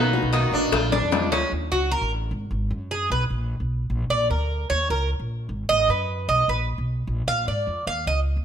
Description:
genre	latin, Cuban son and guajira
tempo	151 BPM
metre	4/4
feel	straight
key	unclear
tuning	A4 = 439 Hz
part	sitar	melody	0.0-1.3 s	D4 to Eb4	-28 LUFS	right 1 dB	none
part	picked old ladder-braced acoustic guitar	accompaniment	0.0-1.5 s	B2 to F#4	-29 LUFS	left 4 dB	none
part	Cuban tres	arpeggios	0.0-8.2 s	B3 to F5	-23 LUFS	right 2 dB	none
part	upright bass	bass	0.0-8.4 s	Ab1 to Ab2	-25 LUFS	equal	none
part	bongos and cowbell	percussion	0.1-1.5 s	none	-25 LUFS	left 7 dB	none
room	light reverb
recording	close, detailed microphones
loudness	-21 LUFS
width	side -9 dB against mid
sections	0.0-1.5 A section; 1.5-8.4 B section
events	drum fill 0.0-1.5; Cuban tres solo 1.5-8.4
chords	0.0 Bmaj7; 0.7 Bb7; 1.5 A6; 2.3 Gbsus2/Ab; 3.1 N.C.; 3.9 Bb; 4.7 Eb5; 5.5 Abm7; 6.3 Bmaj7/A#; 7.1 Bb7; 7.9 Dbadd9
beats	0.33 0.72 1.12 | 1.52 1.92 2.31 2.71 | 3.11 3.50 3.90 4.30 | 4.70 5.09 5.49 5.89 | 6.29 6.68 7.08 7.47 | 7.87 8.27

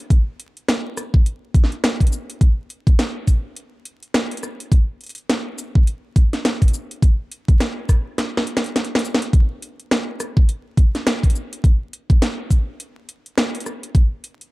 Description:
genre	glitch hop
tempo	104 BPM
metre	4/4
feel	swing 59% on 16ths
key	none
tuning	none
part	drum and bass drum kit	drums	0.1-14.5 s	hi-hat, rim click, shaker, snare drum	-22 LUFS	equal	none
part	electronic kick drum	drums	0.1-14.1 s	none	-14 LUFS	equal	none
room	light reverb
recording	dark, warm production, vinyl crackle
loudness	-17 LUFS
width	side -21 dB against mid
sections	0.0-14.5 A section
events	drum fill 8.2-9.3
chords	none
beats	| 0.10 0.68 1.26 1.84 | 2.41 2.99 3.57 4.14 | 4.72 5.30 5.87 6.45 | 7.03 7.61 8.18 8.76 | 9.34 9.91 10.49 11.07 | 11.64 12.22 12.80 13.37 | 13.95

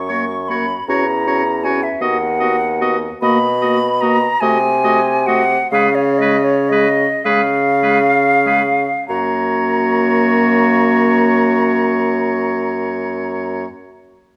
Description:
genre	classical, slow romantic movement for wind quintet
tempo	31-54 BPM (dotted quarters)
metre	6/8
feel	rubato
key	F# major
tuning	A4 = 442 Hz
part	hollow concert flute	melody	0.0-13.6 s	C#5 to C#6	-20 LUFS	equal	none
part	warm bassoon	bass	0.0-13.7 s	D#2 to C#3	-21 LUFS	equal	none
part	bright oboe	second line	0.1-13.7 s	B4 to D#5	-25 LUFS	equal	none
part	clear clarinet	accompaniment	0.1-13.7 s	F#4 to G#4	-24 LUFS	equal	none
part	dark French horn	accompaniment	0.1-13.7 s	G#3 to C#4	-23 LUFS	equal	none
room	wet recital hall reverb, RT60 1.5 s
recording	none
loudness	-16 LUFS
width	mono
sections	0.0-9.1 A section; 9.1-12.9 B section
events	slowing down 2.0-9.1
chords	0.0 F#; 0.9 F#7/E; 2.0 B/D#; 3.2 Bmaj7; 4.4 Cdim7; 5.7 C#7; 9.1 F#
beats	| 0.89 2.02 | 3.23 4.42 | 5.73 7.26 | 9.10 11.00

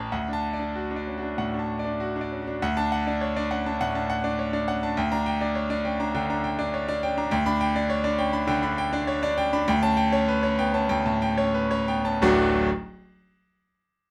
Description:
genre	classical, virtuoso piano study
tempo	89-104 BPM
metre	4/4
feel	rubato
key	D major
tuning	A4 = 440 Hz
part	bright concert grand piano	solo	0.0-12.7 s	D1 to B5	-25 LUFS	equal	none
room	little or no reverb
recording	close, detailed microphones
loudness	-25 LUFS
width	mono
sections	0.0-2.6 A section; 2.6-12.2 B section; 12.2-14.1 C section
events	slowing down 6.1-12.2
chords	0.1 D; 5.0 Gm/D; 7.3 G/D; 9.7 A7/D; 12.2 D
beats	| 0.11 0.74 1.38 2.00 | 2.62 3.22 3.81 4.39 | 4.97 5.56 6.14 6.73 | 7.31 7.89 8.48 9.07 | 9.67 10.28 10.90 11.54 | 12.20

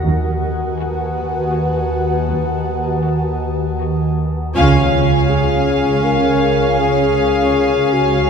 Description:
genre	cinematic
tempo	80 BPM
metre	3/4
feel	straight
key	unclear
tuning	A4 = 440 Hz
part	ethereal airy pad	sustained chords	0.0-8.3 s	Gb4 to Ab5	-23 LUFS	right 1 dB	ensemble chorus, built-in reverb
part	warm studio cello section	bass	0.0-8.3 s	Eb2 to Db3	-21 LUFS	right 3 dB	none
part	clear studio violin section	texture	0.0-4.1 s	Ab5 to A5	-35 LUFS	left 1 dB	none
part	dark studio double bass section	bass	0.1-8.3 s	Db2 to Eb2	-23 LUFS	right 4 dB	none
part	organ-like drone	drone	0.1-8.3 s	Db2 to Eb2	-21 LUFS	equal	ensemble chorus, built-in reverb
part	warm studio violin section	melody	0.8-8.3 s	Gb4 to Ab5	-26 LUFS	left 4 dB	none
part	dark clarinet	second line	4.5-8.3 s	F4 to Bb4	-18 LUFS	left 4 dB	none
part	warm studio violin section	second line	4.6-8.3 s	F5	-21 LUFS	left 2 dB	none
part	dark studio viola section	accompaniment	4.6-8.3 s	Db4	-22 LUFS	equal	none
room	wet cathedral reverb, RT60 4.9 s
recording	none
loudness	-14 LUFS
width	side -6 dB against mid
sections	0.0-4.5 A section; 4.5-8.3 B section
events	band accent 4.5-5.3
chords	0.0 Abm7/Eb; 4.5 Db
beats	| 0.05 0.80 1.55 | 2.30 3.05 3.80 | 4.55 5.30 6.05 | 6.80 7.55 8.30

